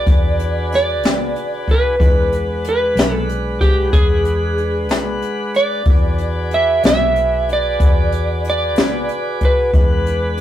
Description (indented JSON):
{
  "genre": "slow blues",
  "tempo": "62 BPM (dotted quarters)",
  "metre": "12/8",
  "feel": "straight",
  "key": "E mixolydian",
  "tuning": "A4 = 440 Hz",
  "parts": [
    { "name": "electric slide guitar", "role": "melody", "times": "0.0-10.4 s", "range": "G4 to E5", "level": "-18 LUFS", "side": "right 1 dB", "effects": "none" },
    { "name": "tonewheel organ", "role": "sustained chords", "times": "0.0-10.4 s", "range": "G#3 to F#5", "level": "-24 LUFS", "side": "equal", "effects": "slow rotary speaker" },
    { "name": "vintage muted fingered electric bass", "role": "bass", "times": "0.1-10.4 s", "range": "B1 to E2", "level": "-22 LUFS", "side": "equal", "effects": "none" },
    { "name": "jazz brush drum kit", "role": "drums", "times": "0.1-10.4 s", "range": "hi-hat, kick drum, snare drum", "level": "-15 LUFS", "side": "left 1 dB", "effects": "none" }
  ],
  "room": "moderate small room reverb, RT60 0.5 s",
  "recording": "rough rehearsal-room recording, warm saturation, faint mains hum",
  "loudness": "-14 LUFS",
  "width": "side -12 dB against mid",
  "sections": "0.0-10.4 A section",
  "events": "none",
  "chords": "0.0 E7"
}